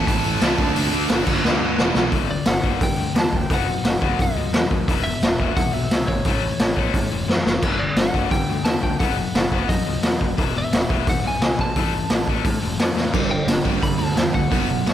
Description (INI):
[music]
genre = punk rock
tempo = 174 BPM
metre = 4/4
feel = straight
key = unclear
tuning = A4 = 437 Hz
[part]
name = lightly driven lead guitar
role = melody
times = 0.0-14.9 s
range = C#5 to B5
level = -28 LUFS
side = left 1 dB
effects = slapback echo
[part]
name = distorted electric guitar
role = riff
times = 0.0-14.9 s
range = E2 to D4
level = -26 LUFS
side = left 11 dB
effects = distortion
[part]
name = sludgy distorted guitar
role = riff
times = 0.0-2.1, 13.1-14.9 s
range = E2 to D4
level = -24 LUFS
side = right 10 dB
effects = overdrive
[part]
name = fuzz picked electric bass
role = bass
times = 0.0-14.9 s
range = E1 to A2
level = -27 LUFS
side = equal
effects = overdrive
[part]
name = raw garage drum kit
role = drums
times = 0.1-14.9 s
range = crash cymbal, hi-hat, kick drum, snare drum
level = -20 LUFS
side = equal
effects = none
[sound]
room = light reverb, studio reverb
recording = none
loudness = -18 LUFS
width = side -11 dB against mid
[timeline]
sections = 0.0-2.1 A section; 2.1-14.9 B section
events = drum fill 1.4-2.1, 7.3-7.6, 13.0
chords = 0.0 A; 0.6 D; 1.3 G5; 1.8 E5; 2.1 G5; 3.5 B/F#; 4.9 E5; 6.3 A; 7.6 G5; 9.0 B/F#; 10.4 E; 11.8 A5; 13.1 G5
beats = 0.06 0.41 | 0.75 1.09 1.44 1.78 | 2.12 2.47 2.81 3.16 | 3.50 3.85 4.19 4.53 | 4.88 5.22 5.57 5.91 | 6.25 6.60 6.94 7.28 | 7.63 7.97 8.31 8.66 | 9.00 9.35 9.69 10.03 | 10.38 10.72 11.07 11.41 | 11.76 12.10 12.45 12.79 | 13.13 13.48 13.82 14.17 | 14.52 14.86